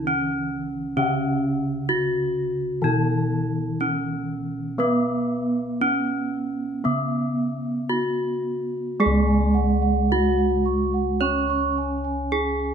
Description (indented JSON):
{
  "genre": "gamelan",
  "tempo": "54-66 BPM",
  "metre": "4/4",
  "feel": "straight",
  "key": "C# slendro",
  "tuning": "A4 = 439 Hz",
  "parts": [
    { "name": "gamelan-type bronze metallophone", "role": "melody", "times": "0.0-12.7 s", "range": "B3-25c to C#5", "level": "-24 LUFS", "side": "equal", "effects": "none" },
    { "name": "gamelan-type bronze metallophone", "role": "accompaniment", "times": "0.0-12.7 s", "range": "C#3 to C#4", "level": "-26 LUFS", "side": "right 2 dB", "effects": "none" },
    { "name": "gamelan-type bossed gongs", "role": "bass", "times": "0.0-12.7 s", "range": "C#2 to B4-25c", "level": "-28 LUFS", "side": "left 2 dB", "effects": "none" },
    { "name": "gamelan-type bronze metallophone", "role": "arpeggios", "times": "9.0-12.7 s", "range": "F#5 to C#6", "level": "-27 LUFS", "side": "right 7 dB", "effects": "none" }
  ],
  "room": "moderate recital hall reverb, RT60 1.6 s",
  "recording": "none",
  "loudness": "-21 LUFS",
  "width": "side -7 dB against mid",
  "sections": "0.0-9.0 A section; 9.0-12.7 B section",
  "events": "none",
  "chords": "none",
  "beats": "0.07 | 0.98 1.90 2.84 3.80 | 4.79 5.80 6.84 7.90 | 8.99 10.10 11.21 12.32"
}